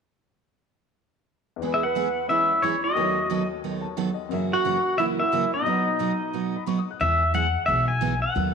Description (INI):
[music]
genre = country, western swing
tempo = 178 BPM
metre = 4/4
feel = swing 64% on 8ths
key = E major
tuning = A4 = 440 Hz
[part]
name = clear upright piano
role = accompaniment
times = 1.6-7.1 s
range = D#2 to F#6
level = -33 LUFS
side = left 11 dB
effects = none
[part]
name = picked steel-string acoustic guitar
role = accompaniment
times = 1.6-8.5 s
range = F#2 to A4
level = -29 LUFS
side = right 7 dB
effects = none
[part]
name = pedal steel guitar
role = melody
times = 1.7-8.5 s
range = C#5 to G#5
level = -24 LUFS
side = left 2 dB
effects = none
[part]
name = clear clarinet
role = second line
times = 1.7-6.6 s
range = D#4 to B4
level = -28 LUFS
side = right 5 dB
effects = none
[part]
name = upright bass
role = bass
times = 7.0-8.5 s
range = B1 to E2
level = -26 LUFS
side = left 2 dB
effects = none
[sound]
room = wet echo chamber reverb, RT60 1.8 s, small room ambience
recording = 1960s-style stereo with parts hard left and right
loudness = -22 LUFS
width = side -6 dB against mid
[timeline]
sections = 1.6-7.0 A section; 7.0-8.5 B section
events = none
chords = 1.6 E; 3.0 B7/D#; 4.3 F#7; 5.7 B; 7.0 E